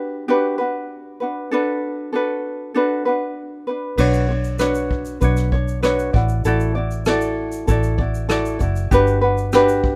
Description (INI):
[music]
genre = acoustic pop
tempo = 97 BPM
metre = 4/4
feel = straight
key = B minor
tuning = A4 = 440 Hz
[part]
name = ukulele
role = accompaniment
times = 0.0-10.0 s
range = D4 to D5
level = -22 LUFS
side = equal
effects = none
[part]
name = vintage muted fingered electric bass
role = bass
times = 4.0-10.0 s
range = F#1 to B1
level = -23 LUFS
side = equal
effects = none
[part]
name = vintage brush drum kit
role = drums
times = 4.0-10.0 s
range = crash cymbal, kick drum, rim click, shaker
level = -26 LUFS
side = equal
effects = none
[sound]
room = little or no reverb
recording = none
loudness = -20 LUFS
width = mono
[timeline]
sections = 0.0-4.0 A section; 4.0-10.0 B section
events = none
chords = 0.0 Gmaj7; 1.5 Bm7; 4.0 Bmadd9; 6.1 Dadd9/A; 8.9 Gmaj7